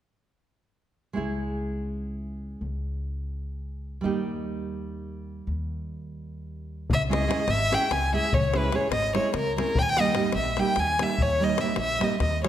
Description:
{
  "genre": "balkan folk, Balkan wedding band",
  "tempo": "293 BPM (eighths)",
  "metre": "7/8",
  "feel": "straight",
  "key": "C# dorian sharp4",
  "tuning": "A4 = 439 Hz",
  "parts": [
    { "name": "nylon-string guitar", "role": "accompaniment", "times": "1.1-12.5 s", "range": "G3 to G#4", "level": "-30 LUFS", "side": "right 4 dB", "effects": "none" },
    { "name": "upright bass", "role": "bass", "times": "1.2-12.5 s", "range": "G#1 to D#2", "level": "-31 LUFS", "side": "left 1 dB", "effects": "none" },
    { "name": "warm violin", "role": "melody", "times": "6.9-12.5 s", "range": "A#4 to G#5", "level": "-25 LUFS", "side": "equal", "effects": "none" },
    { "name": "davul", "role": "percussion", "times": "6.9-12.5 s", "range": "none", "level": "-30 LUFS", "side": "left 3 dB", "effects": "none" }
  ],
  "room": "wet recital hall reverb, RT60 1.6 s",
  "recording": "none",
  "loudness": "-24 LUFS",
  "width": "side -11 dB against mid",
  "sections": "1.2-6.9 A section; 6.9-12.5 B section",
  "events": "none",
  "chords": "1.2 C#m; 4.0 D#; 6.9 C#m; 9.8 D#"
}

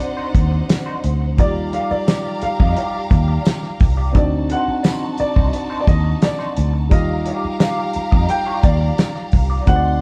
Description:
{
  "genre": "lush 1970s-style soul",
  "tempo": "87 BPM",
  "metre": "4/4",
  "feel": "straight",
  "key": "unclear",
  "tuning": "A4 = 440 Hz",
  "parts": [
    { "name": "clear baby grand piano", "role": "melody", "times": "0.0-10.0 s", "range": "D5 to G5", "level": "-26 LUFS", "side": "equal", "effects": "none" },
    { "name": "rich studio string section", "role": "second line", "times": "0.0-10.0 s", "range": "Eb4 to C6", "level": "-31 LUFS", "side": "equal", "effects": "none" },
    { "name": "barky tine electric piano", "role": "accompaniment", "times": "0.0-10.0 s", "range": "F3 to F5", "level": "-28 LUFS", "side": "equal", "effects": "overdrive" },
    { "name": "electric guitar through a small old amp", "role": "riff", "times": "0.0-9.7 s", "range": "Eb4 to Eb5", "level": "-33 LUFS", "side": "equal", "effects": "wah, tremolo" },
    { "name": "damped 70s drum kit", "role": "drums", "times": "0.0-9.8 s", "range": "hi-hat, kick drum, snare drum", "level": "-18 LUFS", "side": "equal", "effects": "none" },
    { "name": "vintage muted fingered electric bass", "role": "bass", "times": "0.3-10.0 s", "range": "C2 to F2", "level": "-22 LUFS", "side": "equal", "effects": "none" },
    { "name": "tambourine", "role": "percussion", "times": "0.7-9.1 s", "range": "none", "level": "-44 LUFS", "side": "equal", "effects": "none" }
  ],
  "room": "light reverb",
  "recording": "band playing live in one room, cassette tape",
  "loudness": "-18 LUFS",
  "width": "mono",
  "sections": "0.0-10.0 A section",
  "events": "none",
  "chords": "0.0 D7b9; 1.4 Ebmaj9; 4.1 D7b9; 6.9 Ebmaj9"
}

